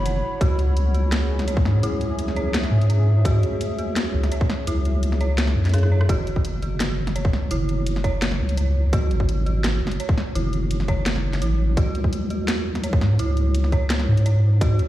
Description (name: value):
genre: half-time drum and bass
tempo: 169 BPM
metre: 4/4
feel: half-time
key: unclear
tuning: A4 = 440 Hz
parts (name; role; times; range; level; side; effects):
- dark analog pad; sustained chords; 0.0-6.1 s; C#4 to B5; -31 LUFS; left 2 dB; chorus, sidechain pumping
- dark detuned synth bell; arpeggios; 0.0-14.9 s; E4 to C#5; -30 LUFS; right 3 dB; chorus, tremolo, dub echo
- deep soft wobble bass; bass; 0.0-14.9 s; F#1 to G#2; -20 LUFS; equal; chorus, tube saturation
- drum and bass drum kit; drums; 0.1-14.9 s; hi-hat, rim click, snare drum; -29 LUFS; equal; overdrive
- electronic kick drum; drums; 0.4-14.7 s; none; -20 LUFS; equal; overdrive
room: little or no reverb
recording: played on a big sound system in a bare room, large studio reverb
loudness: -19 LUFS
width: side -14 dB against mid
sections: 0.0-6.1 A section; 6.1-14.9 A section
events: drop 0.0-6.1, 6.1-14.9; drum fill 5.7-6.1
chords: 0.4 C#m; 6.1 F#5; 11.8 C#m